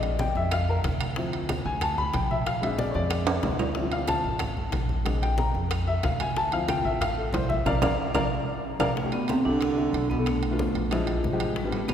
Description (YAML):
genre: Afro-Cuban jazz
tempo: 185 BPM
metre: 4/4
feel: straight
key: unclear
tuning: A4 = 440 Hz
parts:
  - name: warm upright piano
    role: accompaniment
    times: 0.0-11.9 s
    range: F3 to B5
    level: -28 LUFS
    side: left 2 dB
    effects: none
  - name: upright bass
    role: bass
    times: 0.0-11.9 s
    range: A1 to F2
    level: -30 LUFS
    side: equal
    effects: none
  - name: bongos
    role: percussion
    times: 0.0-11.9 s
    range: none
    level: -37 LUFS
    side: left 4 dB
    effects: none
  - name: congas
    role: percussion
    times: 0.0-11.9 s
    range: none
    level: -33 LUFS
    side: right 1 dB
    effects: none
  - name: timbales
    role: percussion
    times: 0.0-11.9 s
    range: none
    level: -34 LUFS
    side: right 4 dB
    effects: none
  - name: claves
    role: percussion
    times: 0.5-11.9 s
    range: none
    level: -43 LUFS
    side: right 4 dB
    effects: none
  - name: vibraphone with medium hard mallets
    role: melody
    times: 9.0-11.9 s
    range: G3 to D4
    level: -27 LUFS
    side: right 1 dB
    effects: none
  - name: mellow baritone saxophone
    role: second line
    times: 9.0-11.9 s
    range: G2 to D3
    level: -35 LUFS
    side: right 4 dB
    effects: none
room: wet church reverb, RT60 3.6 s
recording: recorded in a church or concert hall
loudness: -24 LUFS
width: side -9 dB against mid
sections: 0.0-9.0 A section; 9.0-11.9 B section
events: upright piano solo 0.0-9.0; drum fill 3.3-3.8, 8.5-9.0; band accent 7.7-9.0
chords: 0.0 Bb; 1.2 Dm7; 2.5 Bb7; 3.8 Dm7; 5.1 Bb7; 6.4 Dm7; 7.7 Bb; 9.0 C69; 10.3 Bm7b5; 10.9 Bb7#11